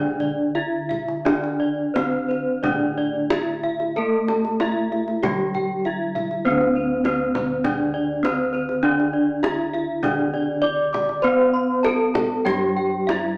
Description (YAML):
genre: Javanese gamelan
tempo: 85-100 BPM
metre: 4/4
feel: straight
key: D slendro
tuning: A4 = 440 Hz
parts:
  - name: gamelan-type bronze metallophone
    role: melody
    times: 0.0-13.4 s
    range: C4-45c to D5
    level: -25 LUFS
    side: equal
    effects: none
  - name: gamelan-type bronze metallophone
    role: accompaniment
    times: 0.0-13.4 s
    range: D3 to C4-45c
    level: -30 LUFS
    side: equal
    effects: none
  - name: gamelan-type bronze metallophone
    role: arpeggios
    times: 0.0-13.4 s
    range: C5-45c to D6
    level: -30 LUFS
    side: equal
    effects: none
  - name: gamelan-type bossed gongs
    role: bass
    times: 0.0-13.4 s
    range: D2 to C5-45c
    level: -31 LUFS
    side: equal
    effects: none
  - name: kendang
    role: percussion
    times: 0.2-13.2 s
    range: none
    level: -31 LUFS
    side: equal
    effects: none
room: wet large studio reverb, RT60 0.8 s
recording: band playing live in one room, small speaker sound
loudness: -22 LUFS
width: mono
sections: 0.0-6.4 A section; 6.4-13.4 B section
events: none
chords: none